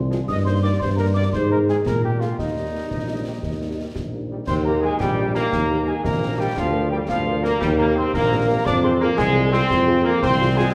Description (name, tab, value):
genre	military-style march for wind band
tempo	115 BPM (dotted quarters)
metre	6/8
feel	straight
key	Eb major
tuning	A4 = 438 Hz
part	mellow cornet	melody	0.0-10.7 s	Eb4 to Eb5	-30 LUFS	equal	none
part	mellow hollow piccolo	second line	0.0-10.7 s	Eb5 to Eb6	-31 LUFS	equal	none
part	warm tuba	bass	0.0-10.7 s	Bb1 to Bb2	-24 LUFS	equal	none
part	dark French horn section	accompaniment	0.1-10.6 s	G3 to Bb4	-32 LUFS	equal	none
part	bright trombone section	sustained chords	0.1-10.7 s	D3 to D4	-27 LUFS	equal	none
part	concert snare drum, clash cymbals and concert bass drum	drums	0.1-10.7 s	none	-32 LUFS	equal	none
room	wet recital hall reverb, RT60 1.4 s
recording	recorded in a church or concert hall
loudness	-21 LUFS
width	mono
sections	0.0-4.5 A section; 4.5-10.7 B section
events	none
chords	0.3 Eb/G; 1.3 Ab5; 1.9 Bb7; 2.4 Eb; 6.6 Bb/D; 7.6 Eb; 8.7 Fm